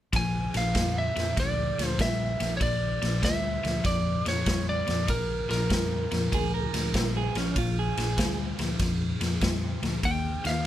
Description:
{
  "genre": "electric blues shuffle",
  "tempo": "97 BPM",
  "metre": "4/4",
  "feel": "swing 67% on 8ths",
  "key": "Bb mixolydian",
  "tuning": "A4 = 440 Hz",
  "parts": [
    { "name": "cranked stack guitar", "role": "riff", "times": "0.1-10.6 s", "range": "Bb2 to Bb3", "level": "-31 LUFS", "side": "left 3 dB", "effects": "overdrive" },
    { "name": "vintage muted fingered electric bass", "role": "bass", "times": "0.1-10.6 s", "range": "Bb1 to F2", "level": "-32 LUFS", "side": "equal", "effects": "none" },
    { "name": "raw garage drum kit", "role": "drums", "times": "0.1-10.5 s", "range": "kick drum, ride cymbal, snare drum", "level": "-30 LUFS", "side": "equal", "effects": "none" },
    { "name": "lightly driven lead guitar", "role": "melody", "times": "0.2-10.7 s", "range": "Bb4 to Ab5", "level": "-30 LUFS", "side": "right 1 dB", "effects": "none" },
    { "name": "electric guitar at the edge of break-up", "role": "second line", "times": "6.3-8.4 s", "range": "Db4 to Bb4", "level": "-32 LUFS", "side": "right 7 dB", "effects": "spring reverb" }
  ],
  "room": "light reverb",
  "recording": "none",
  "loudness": "-25 LUFS",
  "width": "side -12 dB against mid",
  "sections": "0.1-10.7 A section",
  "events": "none",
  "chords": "0.1 Bb; 10.0 Eb",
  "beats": "| 0.13 0.75 1.37 1.99 | 2.61 3.23 3.85 4.47 | 5.09 5.71 6.33 6.94 | 7.56 8.18 8.80 9.42 | 10.03 10.65"
}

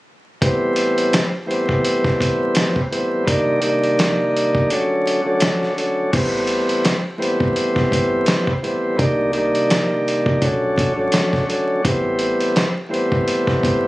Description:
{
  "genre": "hip hop, boom-bap hip-hop",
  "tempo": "84 BPM",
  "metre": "4/4",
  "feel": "swing 56% on 16ths",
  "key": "A dorian",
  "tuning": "A4 = 441 Hz",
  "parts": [
    { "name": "tonewheel organ", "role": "accompaniment", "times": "0.4-13.9 s", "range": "C2 to D4", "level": "-18 LUFS", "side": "equal", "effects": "stopped rotary speaker, high-pass filter, low-pass filter" },
    { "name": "dusty soul sampler-style drum kit", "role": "drums", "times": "0.4-13.8 s", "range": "crash cymbal, hi-hat, kick drum, snare drum", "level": "-20 LUFS", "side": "equal", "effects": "overdrive" },
    { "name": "woody FM bass", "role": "bass", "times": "6.1-13.9 s", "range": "G1 to C2", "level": "-26 LUFS", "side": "equal", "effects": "none" }
  ],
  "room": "light reverb",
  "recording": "recorded on a phone in the room, studio ambience, vinyl crackle, compression",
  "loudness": "-16 LUFS",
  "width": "side -18 dB against mid",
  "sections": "0.4-6.1 A section; 6.1-13.9 B section",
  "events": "kick muted 4.7-6.1",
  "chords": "0.4 Am9; 3.3 Cm9; 4.7 Dmaj7; 6.1 Am9; 9.0 Cm9; 10.4 Bm9; 11.8 Am9",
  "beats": "| 0.42 1.13 1.84 2.56 | 3.27 3.99 4.70 5.42 | 6.13 6.84 7.56 8.27 | 8.99 9.70 10.42 11.13 | 11.85 12.56 13.27"
}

